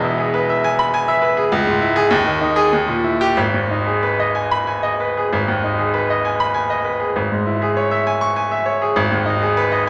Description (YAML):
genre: classical, virtuoso piano study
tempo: 90-102 BPM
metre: 3/4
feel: rubato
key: G# minor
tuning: A4 = 439 Hz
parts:
  - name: clear baby grand piano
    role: solo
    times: 0.0-9.9 s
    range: E1 to C#6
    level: -18 LUFS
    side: equal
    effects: none
room: wet recital hall reverb, RT60 1.3 s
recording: none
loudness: -18 LUFS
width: mono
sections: 0.0-5.3 A section; 5.3-9.9 B section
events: none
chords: 0.0 E; 1.5 C#m; 2.1 G#5/D#; 2.7 D#; 3.4 G#m; 7.2 C#m/G#; 9.0 G#m